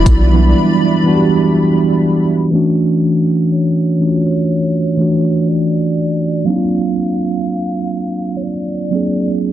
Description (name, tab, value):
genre	R&B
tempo	61 BPM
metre	4/4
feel	swing 54% on 16ths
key	unclear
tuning	A4 = 440 Hz
part	hollow clarinet-like synth lead	melody	0.0-9.5 s	E4 to E#5	-25 LUFS	left 2 dB	chorus, ping-pong delay
part	mellow tine electric piano	accompaniment	0.0-9.5 s	E3 to G#4	-13 LUFS	right 1 dB	slow stereo tremolo
part	hollow soft pad	sustained chords	0.0-2.5 s	G3 to B5	-23 LUFS	left 1 dB	ensemble chorus, sidechain pumping
part	long sustained 808-style bass	bass	0.0-0.5 s	B1	-11 LUFS	equal	none
room	light reverb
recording	dense, heavily limited modern master, low-pass filter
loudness	-12 LUFS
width	side -12 dB against mid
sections	0.0-2.5 A section; 2.5-9.5 B section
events	filter sweep 2.5-9.5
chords	0.0 Em7; 2.5 Dmaj7; 6.5 D7alt